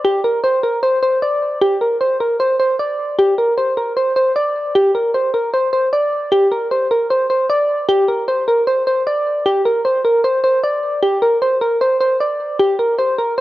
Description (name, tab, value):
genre	hip hop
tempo	153 BPM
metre	4/4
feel	half-time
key	unclear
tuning	A4 = 440 Hz
part	soft electric-piano-like synth keys	solo	0.0-13.4 s	G4 to D5	-14 LUFS	equal	chorus, low-pass filter, cassette tape
room	light reverb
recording	home recording on cassette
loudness	-14 LUFS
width	side -16 dB against mid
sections	0.0-13.4 A section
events	none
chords	none